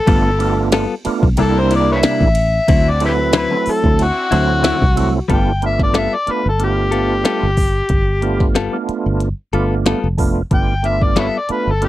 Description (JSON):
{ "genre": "straight-eighth soul blues", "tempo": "92 BPM", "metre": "4/4", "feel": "swing 54% on 16ths", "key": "G mixolydian", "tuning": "A4 = 440 Hz", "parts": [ { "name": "overdriven harmonica", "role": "melody", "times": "0.0-11.9 s", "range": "E4 to G5", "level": "-18 LUFS", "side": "left 2 dB", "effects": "none" }, { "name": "percussive tonewheel organ", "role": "accompaniment", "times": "0.1-11.9 s", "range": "F#3 to F4", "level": "-20 LUFS", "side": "right 5 dB", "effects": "slow rotary speaker, overdrive, chorus vibrato" }, { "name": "warm chamber string section", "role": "sustained chords", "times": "0.1-4.6 s", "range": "B3 to Bb4", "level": "-29 LUFS", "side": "equal", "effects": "none" }, { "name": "direct-recorded clean electric guitar", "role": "stabs", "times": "0.1-11.4 s", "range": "C3 to A4", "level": "-19 LUFS", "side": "left 6 dB", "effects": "none" }, { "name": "fingered electric bass", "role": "bass", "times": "0.1-11.9 s", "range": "F1 to D2", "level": "-18 LUFS", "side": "equal", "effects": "none" }, { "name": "minimal click drum kit", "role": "drums", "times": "0.1-11.9 s", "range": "hi-hat, kick drum, ride cymbal, snare drum", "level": "-18 LUFS", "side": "equal", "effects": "none" } ], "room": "little or no reverb", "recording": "dry, close 1970s-style studio recording", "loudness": "-13 LUFS", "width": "side -15 dB against mid", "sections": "0.0-5.3 A section; 5.3-11.9 B section", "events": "harmonica solo 0.0-5.3", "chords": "0.1 G9; 1.4 C9; 2.7 D9; 5.3 G9", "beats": "| 0.08 0.73 1.38 2.03 | 2.68 3.33 3.98 4.63 | 5.29 5.94 6.59 7.24 | 7.90 8.55 9.20 9.86 | 10.51 11.16 11.82" }